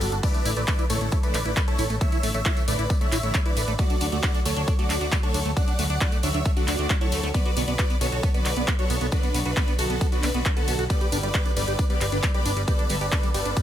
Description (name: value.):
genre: uplifting trance.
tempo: 135 BPM.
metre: 4/4.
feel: straight.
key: B minor.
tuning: A4 = 440 Hz.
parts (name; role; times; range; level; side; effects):
big supersaw lead; melody; 0.0-13.6 s; D4 to F#5; -29 LUFS; right 1 dB; sidechain pumping, dub echo.
clear studio string section; sustained chords; 0.0-13.5 s; D3 to A4; -34 LUFS; left 2 dB; sidechain pumping.
liquid acid bass; arpeggios; 0.0-13.6 s; G3 to G4; -32 LUFS; right 1 dB; phaser, wide subtle chorus, sidechain pumping, dub echo.
fat analog bass; bass; 0.0-13.5 s; G1 to D2; -28 LUFS; equal; sidechain pumping.
punchy analog drum machine; drums; 0.0-13.6 s; crash cymbal, handclaps, hi-hat, ride cymbal; -31 LUFS; equal; overdrive.
tambourine; percussion; 0.0-13.6 s; none; -38 LUFS; left 4 dB; none.
electronic kick drum; drums; 0.2-13.6 s; none; -23 LUFS; equal; overdrive.
room: digital ambience.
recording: none.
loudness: -21 LUFS.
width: side -11 dB against mid.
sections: 0.0-13.6 A section.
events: none.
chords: 0.2 Asus4; 3.8 D; 7.3 Bm; 10.9 G.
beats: | 0.23 0.68 1.12 1.57 | 2.01 2.46 2.90 3.34 | 3.79 4.23 4.68 5.12 | 5.57 6.01 6.46 6.90 | 7.34 7.79 8.23 8.68 | 9.12 9.57 10.01 10.46 | 10.90 11.34 11.79 12.23 | 12.68 13.12 13.57.